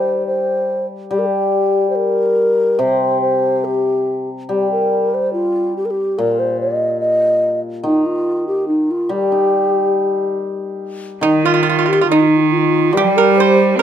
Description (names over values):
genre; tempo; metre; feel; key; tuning
chinese traditional, Chinese chamber ensemble; 71 BPM; 2/4; rubato; G jue mode; A4 = 440 Hz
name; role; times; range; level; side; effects
mellow hollow low xiao; melody; 0.0-13.8 s; Eb4 to Eb5; -16 LUFS; equal; none
hammered dulcimer; accompaniment; 0.0-13.8 s; Bb2 to Eb4; -20 LUFS; left 2 dB; none
breathy mellow low xiao; second line; 11.2-13.8 s; Eb4 to C5; -18 LUFS; left 4 dB; none
pipa; second line; 11.2-13.8 s; Eb4 to C5; -18 LUFS; right 8 dB; none
rich cello; second line; 11.2-13.8 s; Eb3 to C4; -17 LUFS; right 9 dB; none
room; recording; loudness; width
little or no reverb; close, detailed microphones; -14 LUFS; side -9 dB against mid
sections
0.0-11.2 A section; 11.2-13.8 B section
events
none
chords
none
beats
0.28 | 1.12 1.96 | 2.80 3.65 | 4.51 5.36 | 6.20 7.03 | 7.86 8.69 | 9.52 10.37 | 11.23 12.09 | 12.93 13.77